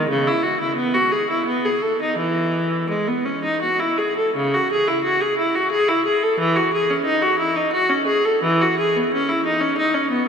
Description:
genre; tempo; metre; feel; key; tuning
classical, baroque-style suite movement for unaccompanied viola; 80-91 BPM; 3/4; rubato; E major, C# minor from 4.4 s; A4 = 440 Hz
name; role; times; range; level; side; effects
clear viola; solo; 0.0-10.3 s; C#3 to A4; -17 LUFS; equal; none
room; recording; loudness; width
wet cathedral reverb, RT60 5.8 s; recorded in a church or concert hall; -17 LUFS; side -6 dB against mid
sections
0.0-4.4 A section; 4.4-10.3 A section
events
none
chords
none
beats
| 0.08 0.76 1.46 | 2.18 2.90 3.62 | 4.35 5.04 5.71 | 6.39 7.06 7.72 | 8.42 9.11 9.78

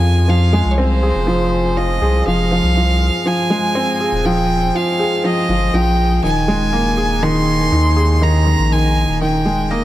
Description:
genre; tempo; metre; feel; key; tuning
piano and strings electronica; 121 BPM; 4/4; straight; F minor; A4 = 440 Hz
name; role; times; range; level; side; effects
clear violin; melody; 0.0-9.8 s; C5 to C6; -20 LUFS; right 1 dB; tape echo
felt-muted upright piano; riff; 0.0-9.8 s; Eb3 to Ab4; -17 LUFS; equal; tape echo
round analog bass; bass; 0.0-9.8 s; Eb1 to F2; -17 LUFS; equal; none
room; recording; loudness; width
light reverb, small room ambience; none; -13 LUFS; side -14 dB against mid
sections
0.0-9.8 A section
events
none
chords
0.0 Fm; 6.2 Ebsus4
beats
| 0.28 0.78 1.27 1.77 | 2.27 2.76 3.26 3.75 | 4.25 4.75 5.24 5.74 | 6.23 6.73 7.22 7.72 | 8.22 8.71 9.21 9.70

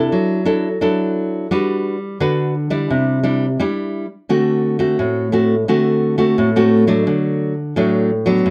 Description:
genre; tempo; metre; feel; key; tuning
samba; 86 BPM; 4/4; straight; unclear; A4 = 442 Hz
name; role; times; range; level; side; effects
nylon-string guitar; solo; 0.0-8.5 s; G2 to B4; -17 LUFS; equal; none
room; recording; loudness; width
moderate studio reverb, RT60 0.6 s; none; -17 LUFS; mono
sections
0.0-8.5 A section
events
none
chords
0.1 Dadd9/F#; 1.5 Gmaj7; 2.9 Cadd9; 4.3 D7; 7.1 D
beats
0.13 0.82 | 1.52 2.21 2.91 3.60 | 4.30 4.99 5.69 6.38 | 7.08 7.77 8.47

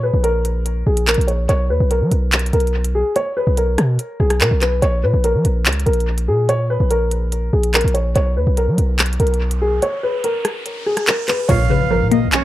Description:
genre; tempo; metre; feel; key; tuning
hip hop, drill; 144 BPM; 4/4; half-time; Bb phrygian; A4 = 440 Hz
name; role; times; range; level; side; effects
dark concert grand piano; melody; 0.0-12.4 s; Ab4 to Db5; -20 LUFS; left 1 dB; analog delay
hard-hitting 808-style bass; bass; 0.0-12.4 s; Bb1 to F#3; -17 LUFS; equal; none
drill drum kit; drums; 0.2-12.4 s; crash cymbal, handclaps, hi-hat, rim click; -20 LUFS; equal; analog delay
riser and impact; sound effects; 9.3-12.4 s; none; -28 LUFS; equal; none
breathy bright jazz flute; second line; 11.5-12.4 s; Db5 to F5; -23 LUFS; right 11 dB; analog delay
glassy wavetable pluck; accompaniment; 11.5-12.4 s; Bb2 to Db4; -17 LUFS; left 2 dB; chorus
room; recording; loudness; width
light reverb; echo-heavy mix; -15 LUFS; side -14 dB against mid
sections
0.0-11.5 A section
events
riser 9.3-11.5; break 9.8-11.5; impact 11.5-12.4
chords
0.0 N.C.; 11.5 Bbm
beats
0.24 0.66 1.07 | 1.49 1.91 2.32 2.74 | 3.16 3.57 3.99 4.41 | 4.82 5.24 5.66 6.07 | 6.49 6.91 7.32 7.74 | 8.16 8.57 8.99 9.41 | 9.82 10.24 10.66 11.07 | 11.49 11.91 12.32

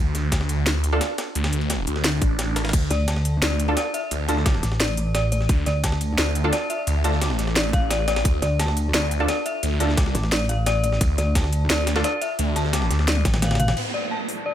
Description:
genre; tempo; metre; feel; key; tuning
dark technical drum and bass; 174 BPM; 4/4; straight; D minor; A4 = 440 Hz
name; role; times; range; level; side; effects
orchestra-hit-like synth stab; stabs; 0.0-1.5, 3.7-12.5 s; D4 to A4; -27 LUFS; right 2 dB; built-in reverb, tape echo
phased detuned saw bass; bass; 0.0-13.2 s; A1 to D2; -23 LUFS; equal; phaser, overdrive, sidechain pumping
breakbeat sampler-style drum kit; drums; 0.1-13.8 s; ride cymbal, snare drum; -31 LUFS; equal; high-pass filter on snare, high-pass filter on cymbals
drum and bass drum kit; drums; 0.1-14.4 s; crash cymbal, hi-hat, snare drum, toms; -25 LUFS; equal; none
electronic kick drum; drums; 0.3-13.3 s; none; -21 LUFS; equal; none
swell and downlifter; sound effects; 2.2-2.7, 13.8-14.5 s; none; -30 LUFS; right 2 dB; none
dark detuned synth bell; arpeggios; 2.9-14.5 s; D5 to D6; -27 LUFS; left 2 dB; chorus, sidechain pumping, tape echo
pulsing pluck wobble bass; bass; 2.9-6.2, 8.4-13.8 s; A1 to D2; -22 LUFS; equal; distortion, chorus
deep dark ambient pad; sustained chords; 14.1-14.5 s; A3 to D5; -47 LUFS; left 3 dB; none
room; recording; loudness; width
light reverb, digital ambience; none; -20 LUFS; side -11 dB against mid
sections
0.0-13.8 A section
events
swell 2.2-2.7; drum fill 13.1-13.8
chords
0.0 Dm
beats
0.32 0.67 1.01 | 1.35 1.70 2.04 2.39 | 2.73 3.08 3.42 3.77 | 4.11 4.46 4.80 5.15 | 5.49 5.84 6.18 6.53 | 6.87 7.22 7.56 7.91 | 8.25 8.60 8.94 9.29 | 9.63 9.97 10.32 10.66 | 11.01 11.36 11.70 12.04 | 12.39 12.73 13.08 13.42 | 13.77 14.11 14.46

